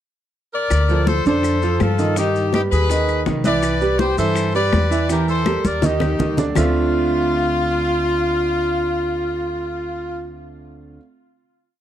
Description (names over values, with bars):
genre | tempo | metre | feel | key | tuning
latin, salsa | 164 BPM | 4/4 | straight | D minor | A4 = 439 Hz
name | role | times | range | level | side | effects
brilliant horn section | melody | 0.5-10.3 s | Eb4 to D5 | -20 LUFS | left 2 dB | tape echo
upright bass | bass | 0.7-11.0 s | C2 to G2 | -22 LUFS | equal | none
bongos | percussion | 0.7-6.6 s | none | -28 LUFS | left 7 dB | none
claves | percussion | 0.7-6.6 s | none | -35 LUFS | left 9 dB | none
congas | percussion | 0.7-6.6 s | none | -24 LUFS | left 1 dB | none
maracas | percussion | 0.7-6.7 s | none | -36 LUFS | left 7 dB | none
bright concert grand piano | accompaniment | 0.9-11.0 s | D3 to E5 | -22 LUFS | right 4 dB | none
room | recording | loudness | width
light reverb | dry, close 1970s-style studio recording | -16 LUFS | side -11 dB against mid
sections
0.0-0.7 pickup bar; 0.7-6.6 A section; 6.6-9.5 final chord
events
drum fill 5.5-6.6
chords
0.0 N.C.; 0.7 Dm7; 2.2 Gaug; 3.6 Cmaj9; 5.1 Edim; 5.8 Eb; 6.6 Dm9